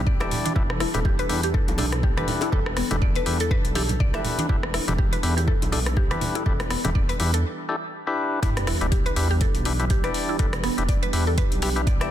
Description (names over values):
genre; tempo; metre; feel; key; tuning
afro house; 122 BPM; 4/4; swing 57% on 16ths; E minor pentatonic; A4 = 440 Hz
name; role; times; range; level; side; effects
warm analog pad; sustained chords; 0.0-12.1 s; E3 to A4; -34 LUFS; right 2 dB; wide subtle chorus, sidechain pumping
dark detuned saw bass; bass; 0.0-12.1 s; D1 to E2; -26 LUFS; equal; tube saturation, sidechain pumping
mallet-like synth pluck; arpeggios; 0.1-12.1 s; B3 to E5; -30 LUFS; equal; chorus, phaser, sidechain pumping, dub echo
electronic kick drum; drums; 0.1-12.0 s; none; -24 LUFS; equal; none
percussive tonewheel organ; stabs; 0.2-12.1 s; D4 to D5; -30 LUFS; left 3 dB; overdrive, sidechain pumping, dub echo
afro-pop drum kit; drums; 0.2-12.1 s; hi-hat, rim click; -30 LUFS; left 2 dB; none
bongos; percussion; 0.2-7.3 s; none; -36 LUFS; left 2 dB; none
congas; percussion; 0.3-6.9 s; none; -32 LUFS; right 3 dB; none
sub drop; sound effects; 8.5-10.4 s; none; -32 LUFS; equal; none
room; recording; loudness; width
light reverb, digital ambience; dense, heavily limited modern master; -21 LUFS; side -11 dB against mid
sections
0.0-8.4 A section; 8.4-12.1 B section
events
break 7.4-8.4; drop 8.4-12.1; impact 8.4-10.4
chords
0.0 Em7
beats
0.07 | 0.56 1.05 1.54 2.03 | 2.52 3.02 3.51 4.00 | 4.49 4.98 5.48 5.97 | 6.46 6.95 7.44 7.93 | 8.43 8.92 9.41 9.90 | 10.39 10.89 11.38 11.87